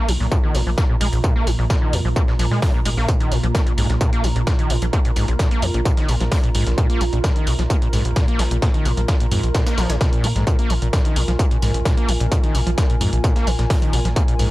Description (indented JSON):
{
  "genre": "driving peak-time techno",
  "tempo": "130 BPM",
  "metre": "4/4",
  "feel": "straight",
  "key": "unclear",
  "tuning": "A4 = 439 Hz",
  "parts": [
    { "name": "screaming distorted acid line", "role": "riff", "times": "0.0-14.5 s", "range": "Bb1 to Db4", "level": "-24 LUFS", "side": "equal", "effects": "distortion, wide subtle chorus, sidechain pumping, analog delay" },
    { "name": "metallic inharmonic drone", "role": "drone", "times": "0.0-14.5 s", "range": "Bb2", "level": "-28 LUFS", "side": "right 2 dB", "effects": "chorus, built-in reverb, phaser, sidechain pumping" },
    { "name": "airy breathy pad", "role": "texture", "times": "0.0-14.5 s", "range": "F4 to Bb5", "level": "-32 LUFS", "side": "equal", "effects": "chorus, sidechain pumping" },
    { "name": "tight sequencer bass", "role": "bass", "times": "0.1-14.5 s", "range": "Ab1 to Bb2", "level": "-21 LUFS", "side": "equal", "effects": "sidechain pumping" },
    { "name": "breakbeat sampler-style drum kit", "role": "drums", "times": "0.1-14.5 s", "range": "hi-hat, snare drum, tambourine", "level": "-31 LUFS", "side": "equal", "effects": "high-pass filter on perc, high-pass filter on snare, high-pass filter on hats" },
    { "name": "electronic hi-hat", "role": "drums", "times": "0.1-14.5 s", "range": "none", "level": "-30 LUFS", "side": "right 1 dB", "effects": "sidechain pumping on hats" },
    { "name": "electronic kick drum", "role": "drums", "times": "0.3-14.3 s", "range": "none", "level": "-18 LUFS", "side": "equal", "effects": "distortion, overdrive" }
  ],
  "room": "little or no reverb",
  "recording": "dry, gritty hardware recording",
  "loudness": "-16 LUFS",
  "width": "side -18 dB against mid",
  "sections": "0.0-14.5 A section",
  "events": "fade-in on analog synth pad 0.0-14.5; filter sweep on acid bass 0.0-14.5",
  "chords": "0.0 Bb5"
}